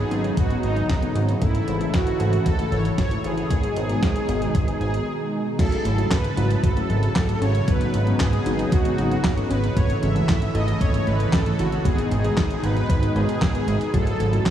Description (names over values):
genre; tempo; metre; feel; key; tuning
synthwave; 115 BPM; 4/4; straight; G# phrygian; A4 = 440 Hz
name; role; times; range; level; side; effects
soft supersaw; melody; 0.0-14.5 s; D#4 to E5; -28 LUFS; right 1 dB; tape echo
warm analog pad; sustained chords; 0.0-14.5 s; B2 to A5; -26 LUFS; equal; chorus, sidechain pumping
chorused synth bass; bass; 0.0-14.5 s; G#1; -24 LUFS; equal; sidechain pumping
mellow FM electric piano; stabs; 0.1-14.5 s; G#2 to C#5; -30 LUFS; left 2 dB; chorus
clean 12-bit digital drum machine; drums; 0.1-14.5 s; crash cymbal, handclaps, hi-hat, snare drum; -30 LUFS; right 1 dB; none
electronic kick drum; drums; 0.4-14.5 s; none; -22 LUFS; equal; none
warbly dusty pluck; arpeggios; 5.6-14.5 s; F#3 to D#5; -32 LUFS; right 2 dB; none
room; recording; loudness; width
moderate huge ambient reverb, RT60 8.0 s; dreamy mix soaked in reverb, small room ambience; -19 LUFS; side -10 dB against mid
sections
0.0-5.6 A section; 5.6-14.5 B section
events
break 5.1-5.6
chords
0.0 Badd9/G#; 1.4 A/G#; 3.5 G#m; 5.6 F#m7/G#; 7.7 Badd9/G#; 9.8 A/G#; 11.9 G#m; 13.9 F#m7/G#